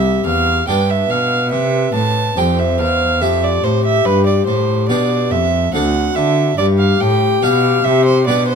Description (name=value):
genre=classical, baroque-style sonata movement with continuo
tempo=71 BPM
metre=3/4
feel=straight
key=C major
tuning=A4 = 439 Hz
part: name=mellow baroque flute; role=melody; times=0.0-8.6 s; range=F#4 to C5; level=-19 LUFS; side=left 10 dB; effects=none
part: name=warm violin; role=second line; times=0.0-8.6 s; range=B4 to A5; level=-18 LUFS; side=right 5 dB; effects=none
part: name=harpsichord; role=accompaniment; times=0.0-8.6 s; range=C2 to A4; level=-22 LUFS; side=left 1 dB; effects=none
part: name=rich cello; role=bass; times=0.0-8.6 s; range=C2 to D3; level=-17 LUFS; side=right 2 dB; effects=none
room=light reverb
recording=close, detailed microphones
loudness=-13 LUFS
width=side -6 dB against mid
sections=0.0-8.6 A section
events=none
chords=0.0 C; 0.7 G7; 1.5 C; 4.1 G; 5.7 D7; 6.6 G